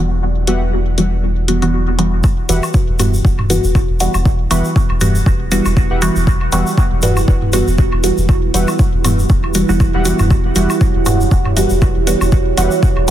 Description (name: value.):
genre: dub techno.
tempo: 119 BPM.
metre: 4/4.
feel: swing 56% on 16ths.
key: E dorian.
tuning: A4 = 439 Hz.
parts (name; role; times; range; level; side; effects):
deep dark ambient pad; sustained chords; 0.0-13.1 s; E4 to D5; -23 LUFS; right 5 dB; chorus, built-in reverb, sidechain pumping.
filtered dub chord stab; stabs; 0.0-13.1 s; E3 to F#4; -18 LUFS; right 1 dB; chorus, phaser, cassette tape, sidechain pumping, dub echo.
soft dub sub bass; bass; 0.0-13.1 s; E1; -18 LUFS; equal; sidechain pumping.
warbly lo-fi synth keys; riff; 0.5-12.7 s; G4 to F#5; -28 LUFS; left 1 dB; chorus, sidechain pumping, dub echo.
electronic hi-hat; drums; 0.5-13.1 s; none; -22 LUFS; left 2 dB; none.
electronic kick drum; drums; 2.2-12.9 s; none; -14 LUFS; equal; none.
egg shaker; percussion; 2.2-13.1 s; none; -27 LUFS; left 1 dB; none.
electronic woodblock and toms; percussion; 2.2-13.1 s; none; -20 LUFS; equal; sidechain pumping on perc, sidechain pumping on toms.
room: light reverb, digital ambience.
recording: dense, heavily limited modern master.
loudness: -12 LUFS.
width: side -12 dB against mid.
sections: 0.0-2.2 A section; 2.2-13.1 B section.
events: filter sweep on ambient pad 0.0-2.2.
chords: 0.0 Emadd9.